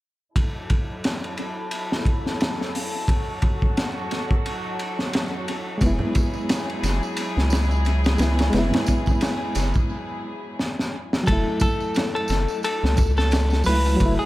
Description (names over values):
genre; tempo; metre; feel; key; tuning
trip hop; 88 BPM; 4/4; swing 57% on 16ths; F# minor; A4 = 440 Hz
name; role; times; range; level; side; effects
warm studio string section; sustained chords; 0.4-11.2 s; F#3 to A4; -30 LUFS; left 1 dB; low-pass filter
crunchy breakbeat drum kit; drums; 0.4-14.2 s; hi-hat, kick drum, ride cymbal, snare drum; -23 LUFS; equal; analog delay
reed electric piano; accompaniment; 5.8-14.3 s; F#3 to E4; -27 LUFS; equal; fast tremolo, harmonic tremolo, low-pass filter, tape echo
round analog bass; bass; 5.8-14.2 s; F#1 to C#2; -21 LUFS; equal; none
tambourine and congas; percussion; 5.8-14.2 s; none; -34 LUFS; right 3 dB; analog delay
clean electric guitar; melody; 11.3-14.3 s; G#4 to B4; -25 LUFS; left 1 dB; tape echo
room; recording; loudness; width
small room ambience; echo-heavy mix; -20 LUFS; side -17 dB against mid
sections
0.4-11.3 A section; 11.3-14.3 B section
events
filter sweep on string section 0.4-11.3; break 9.9-11.3; drum fill 10.6-11.3; filter sweep on reed electric piano 11.3-14.3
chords
0.4 F#m7; 5.8 E/F#; 11.3 F#m7